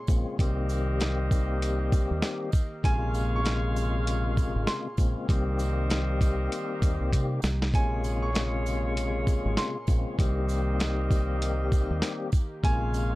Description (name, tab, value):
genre	hip hop, boom-bap hip-hop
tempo	98 BPM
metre	4/4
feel	swing 60% on 16ths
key	unclear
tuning	A4 = 440 Hz
part	bright upright piano	melody	0.0-13.1 s	Ab5 to Db6	-35 LUFS	right 1 dB	high-pass filter, low-pass filter, plate reverb
part	warm analog pad	sustained chords	0.0-13.2 s	Bb2 to Ab4	-40 LUFS	right 1 dB	none
part	bright saxophone section	stabs	0.0-13.2 s	F4 to F5	-38 LUFS	right 2 dB	high-pass filter, low-pass filter, analog delay
part	tonewheel organ	accompaniment	0.1-13.2 s	C3 to G4	-32 LUFS	left 4 dB	fast rotary speaker, high-pass filter, low-pass filter
part	deep dub fingered electric bass	bass	0.1-13.2 s	Ab1 to C3	-28 LUFS	equal	none
part	dusty soul sampler-style drum kit	drums	0.1-13.1 s	hi-hat, kick drum, shaker, snare drum	-26 LUFS	equal	none
part	sleigh bells	percussion	0.1-13.1 s	none	-49 LUFS	right 11 dB	none
room	little or no reverb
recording	dark, warm production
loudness	-25 LUFS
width	side -19 dB against mid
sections	0.0-13.2 A section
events	drum fill 7.1-7.7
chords	0.4 Cm7; 2.8 Bbm9; 5.3 Cm7; 7.7 Bbm9; 10.2 Cm7; 12.6 Bbm9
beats	| 0.39 1.00 1.61 2.23 | 2.84 3.45 4.06 4.68 | 5.29 5.90 6.51 7.13 | 7.74 8.35 8.96 9.57 | 10.19 10.80 11.41 12.02 | 12.64